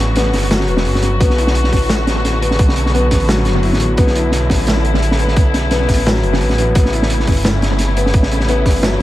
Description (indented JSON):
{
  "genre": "half-time drum and bass",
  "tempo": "173 BPM",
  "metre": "4/4",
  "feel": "swing 55% on 16ths, half-time",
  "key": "B minor",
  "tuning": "A4 = 440 Hz",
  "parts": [
    { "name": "muted chamber string section", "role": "sustained chords", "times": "0.0-9.0 s", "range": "C#3 to F#4", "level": "-21 LUFS", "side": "left 1 dB", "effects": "sidechain pumping" },
    { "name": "felt-muted upright piano", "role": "arpeggios", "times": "0.0-9.0 s", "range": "F#3 to E4", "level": "-20 LUFS", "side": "left 2 dB", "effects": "analog delay" },
    { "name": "phased detuned saw bass", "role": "bass", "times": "0.0-9.0 s", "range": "E1 to B1", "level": "-17 LUFS", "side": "equal", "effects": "phaser, tube saturation" },
    { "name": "crunchy breakbeat drum kit", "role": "drums", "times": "0.2-9.0 s", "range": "hi-hat, snare drum", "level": "-19 LUFS", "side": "equal", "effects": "analog delay" },
    { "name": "electronic kick drum", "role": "drums", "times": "1.2-8.7 s", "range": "none", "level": "-14 LUFS", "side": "equal", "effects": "overdrive" }
  ],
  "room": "light reverb, small room ambience",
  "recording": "echo-heavy mix",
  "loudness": "-12 LUFS",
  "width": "side -15 dB against mid",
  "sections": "0.0-9.0 A section",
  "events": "break 0.0-1.2",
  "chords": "0.0 A; 1.2 Bm; 6.8 A"
}